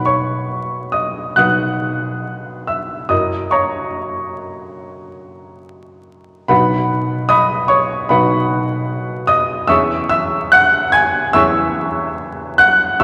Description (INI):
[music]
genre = classical, romantic character piece for solo piano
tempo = 73 BPM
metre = 4/4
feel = uneven beats, rubato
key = B major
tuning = A4 = 440 Hz
[part]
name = dark baby grand piano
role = solo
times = 0.0-13.0 s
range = E2 to G#6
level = -16 LUFS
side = equal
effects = none
[sound]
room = wet church reverb, RT60 3.4 s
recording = recorded in a church or concert hall, vinyl crackle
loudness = -16 LUFS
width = mono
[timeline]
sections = 0.0-13.0 A section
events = none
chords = 0.0 B; 3.1 F#7; 6.5 B; 9.7 C#m/E